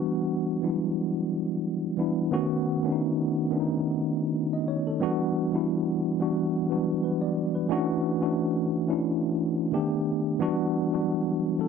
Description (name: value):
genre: R&B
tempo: 89 BPM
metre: 4/4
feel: swing 53% on 16ths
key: E dorian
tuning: A4 = 443 Hz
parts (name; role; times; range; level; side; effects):
- mellow tine electric piano; solo; 0.0-11.7 s; D#3 to D#5; -24 LUFS; equal; medium stereo tremolo
room: little or no reverb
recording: dry, close 1970s-style studio recording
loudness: -24 LUFS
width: side -6 dB against mid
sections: 0.0-2.3 A section; 2.3-11.7 B section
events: none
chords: 0.0 Em9; 2.3 B9; 5.0 Em9; 7.7 Dmaj9; 9.7 B7alt; 10.4 Em9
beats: 0.29 0.97 1.64 | 2.32 2.99 3.66 4.34 | 5.01 5.69 6.36 7.04 | 7.71 8.38 9.06 9.73 | 10.41 11.08